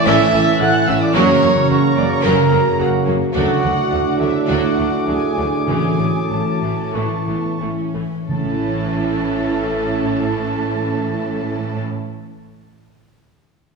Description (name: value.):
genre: cinematic, heroic adventure film score.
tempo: 87-110 BPM.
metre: 4/4.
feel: straight.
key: A major.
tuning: A4 = 440 Hz.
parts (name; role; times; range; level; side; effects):
dark symphonic violin section; melody; 0.0-11.8 s; E5 to F#6; -29 LUFS; left 1 dB; none.
clear oboe; second line; 0.0-11.8 s; A5 to D6; -28 LUFS; left 2 dB; none.
mellow flute section; second line; 0.0-11.8 s; E5 to F#6; -29 LUFS; left 1 dB; none.
warm clarinet; second line; 0.0-11.8 s; C#4 to E4; -26 LUFS; right 2 dB; none.
dark French horn section; sustained chords; 0.0-11.8 s; C#4 to F#4; -24 LUFS; equal; none.
warm trombone section; sustained chords; 0.0-11.8 s; A2 to A#3; -25 LUFS; right 5 dB; none.
concert harp; arpeggios; 0.0-12.6 s; F#2 to E6; -24 LUFS; left 4 dB; none.
dark trumpet section; stabs; 0.0-11.8 s; E4 to F#5; -22 LUFS; right 4 dB; none.
rich symphonic cello section; bass; 0.0-11.8 s; D2 to A2; -28 LUFS; right 3 dB; none.
rich symphonic violin section; second line; 0.1-11.8 s; A3 to A#4; -28 LUFS; left 1 dB; none.
clear symphonic viola section; accompaniment; 0.1-11.8 s; E3 to C#4; -25 LUFS; right 3 dB; none.
rich symphonic double bass section; bass; 0.1-11.8 s; F#1 to D2; -27 LUFS; right 4 dB; none.
timpani; percussion; 5.7-12.5 s; A2; -25 LUFS; right 2 dB; none.
room: wet scoring stage reverb, RT60 1.8 s.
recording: studio reverb.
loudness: -15 LUFS.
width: side -4 dB against mid.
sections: 0.0-8.3 A section; 8.3-11.0 B section.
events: slowing down 2.2-8.3.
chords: 0.0 A; 1.1 F#; 3.3 D; 5.7 A.